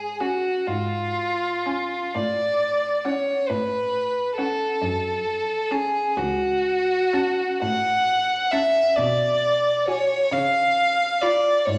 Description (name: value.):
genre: classical, slow romantic movement for string quartet.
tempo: 44 BPM (dotted quarters).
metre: 6/8.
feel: uneven beats, rubato.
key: F# minor.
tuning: A4 = 440 Hz.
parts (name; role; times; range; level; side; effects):
rich violin; second line; 0.0-11.8 s; E#4 to F#5; -23 LUFS; equal; none.
warm cello; bass; 0.0-11.8 s; C#2 to C#3; -34 LUFS; equal; none.
warm violin; melody; 0.2-11.6 s; F#5 to B5; -41 LUFS; equal; none.
rich viola; accompaniment; 0.2-11.6 s; C#4 to F#4; -35 LUFS; equal; none.
room: wet recital hall reverb, RT60 1.4 s.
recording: none.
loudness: -23 LUFS.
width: mono.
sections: 0.0-11.8 A section.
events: none.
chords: 0.0 C#/G#; 2.2 F#m/A; 4.8 F#m; 7.6 F#m/A; 9.0 G#m7b5/B; 10.3 C#7.